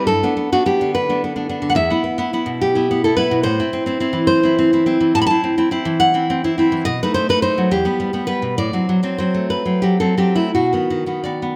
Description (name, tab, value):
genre	romantic piece for solo classical guitar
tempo	56-74 BPM (dotted quarters)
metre	6/8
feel	rubato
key	unclear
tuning	A4 = 440 Hz
part	nylon-string guitar	solo	0.0-11.6 s	E2 to B5	-18 LUFS	equal	none
room	moderate concert hall reverb, RT60 2.3 s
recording	close, detailed microphones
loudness	-18 LUFS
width	mono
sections	0.0-11.6 A section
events	none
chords	0.1 G; 1.8 E5; 3.5 Am; 6.9 B7; 7.7 Em; 8.6 F#dim/A; 10.5 B